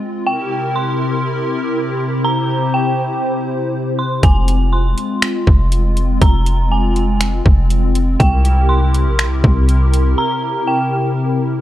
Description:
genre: hip hop, atmospheric cloud-rap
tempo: 121 BPM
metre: 4/4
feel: half-time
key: unclear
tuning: A4 = 439 Hz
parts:
  - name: hollow soft pad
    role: sustained chords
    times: 0.0-11.6 s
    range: C3 to C5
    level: -19 LUFS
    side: left 1 dB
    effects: ensemble chorus, sidechain pumping
  - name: dark detuned synth bell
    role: melody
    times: 0.3-11.1 s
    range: G5 to C6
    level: -22 LUFS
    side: right 2 dB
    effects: chorus, low-pass filter, tape echo
  - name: warm 808-style bass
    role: bass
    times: 4.2-10.2 s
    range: F1 to C2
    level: -14 LUFS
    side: equal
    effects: none
  - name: trap drum kit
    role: drums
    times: 4.2-10.1 s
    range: finger snaps, hi-hat, kick drum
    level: -14 LUFS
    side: equal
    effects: none
room: light reverb, digital ambience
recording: none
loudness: -13 LUFS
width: side -13 dB against mid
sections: 0.0-11.6 A section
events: break 10.2-11.6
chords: 0.3 C7; 4.2 Fm; 8.2 C7

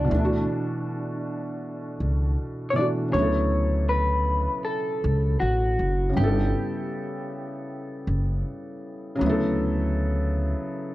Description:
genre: lo-fi hip hop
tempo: 79 BPM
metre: 4/4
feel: swing 58% on 16ths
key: D major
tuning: A4 = 439 Hz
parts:
  - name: electric guitar through a small old amp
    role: melody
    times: 0.0-8.8 s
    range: D4 to D5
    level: -28 LUFS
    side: equal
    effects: analog delay
  - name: felt-muted upright piano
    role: accompaniment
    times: 0.0-10.9 s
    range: B2 to A4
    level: -28 LUFS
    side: equal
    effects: none
  - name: upright bass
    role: bass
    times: 0.0-10.5 s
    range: F#1 to D2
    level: -24 LUFS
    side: equal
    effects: none
room: light reverb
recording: cassette tape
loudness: -23 LUFS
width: side -16 dB against mid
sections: 0.0-3.1 A section; 3.1-10.9 B section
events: none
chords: 0.1 D6; 3.1 Dmaj7; 6.2 G; 9.2 Dmaj7

